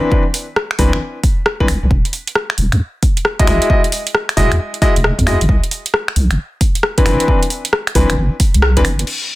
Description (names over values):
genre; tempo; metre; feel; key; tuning
UK garage, two-step garage; 134 BPM; 4/4; swing 65% on 16ths; unclear; A4 = 439 Hz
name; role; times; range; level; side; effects
clear baby grand piano; stabs; 0.0-8.8 s; E3 to D#5; -17 LUFS; left 1 dB; low-pass filter, digital delay
electronic kick drum; drums; 0.1-8.8 s; none; -15 LUFS; equal; small room ambience
house drum kit; drums; 0.3-9.2 s; crash cymbal, finger snaps, hi-hat, rim click; -18 LUFS; equal; soft clipping on snare, small room ambience
deep soft wobble bass; bass; 0.8-9.0 s; E1 to E2; -15 LUFS; equal; chorus, tube saturation
room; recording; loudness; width
light reverb; dense, heavily limited modern master; -13 LUFS; side -18 dB against mid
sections
0.0-9.1 A section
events
band accent 8.6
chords
0.0 Cmaj9; 1.9 Emaj9; 5.5 Cmaj9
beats
| 0.12 0.56 1.01 1.46 | 1.91 2.35 2.80 3.25 | 3.70 4.15 4.59 5.04 | 5.49 5.94 6.38 6.83 | 7.28 7.73 8.18 8.62 | 9.07